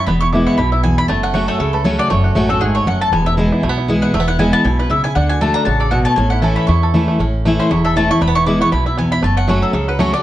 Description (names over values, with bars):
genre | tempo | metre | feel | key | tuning
bluegrass | 236 BPM | 4/4 | swing 55% on 8ths | A major | A4 = 439 Hz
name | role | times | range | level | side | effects
bluegrass banjo | melody | 0.0-10.2 s | F#3 to A4 | -22 LUFS | right 5 dB | none
mandolin | melody | 0.0-10.2 s | G#4 to D6 | -19 LUFS | left 1 dB | none
picked steel-string acoustic guitar | accompaniment | 0.0-10.2 s | E2 to F#4 | -16 LUFS | left 1 dB | none
upright bass | bass | 0.1-10.1 s | E1 to E2 | -19 LUFS | equal | none
room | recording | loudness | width
moderate studio reverb, RT60 0.7 s | worn, warbling old tape, cassette tape, warbly pitch drift | -13 LUFS | side -14 dB against mid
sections
0.0-7.2 A section; 7.2-10.2 A section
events
none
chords
0.1 E; 1.1 F#m; 3.1 E; 5.2 D; 6.2 A; 8.2 E; 9.2 F#m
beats
| 0.07 0.32 0.57 0.83 | 1.08 1.34 1.59 1.85 | 2.10 2.36 2.61 2.87 | 3.12 3.38 3.63 3.88 | 4.14 4.39 4.65 4.90 | 5.16 5.41 5.67 5.92 | 6.18 6.43 6.69 6.94 | 7.20 7.45 7.70 7.96 | 8.21 8.47 8.72 8.98 | 9.23 9.48 9.74 9.99